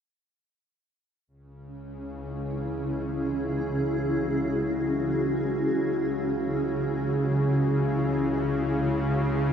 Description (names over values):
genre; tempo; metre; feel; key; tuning
dark ambient drone; free time; none; none; C# minor; A4 = 440 Hz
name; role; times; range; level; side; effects
granular cloud pad; sustained chords; 1.9-9.5 s; C#4 to G#4; -28 LUFS; equal; built-in reverb
bowed-like drone; drone; 1.6-9.5 s; C#2 to C#3; -27 LUFS; equal; built-in reverb
room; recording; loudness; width
wet cathedral reverb, RT60 6.1 s; none; -24 LUFS; side -8 dB against mid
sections
1.3-9.5 A section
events
none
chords
1.3 C#m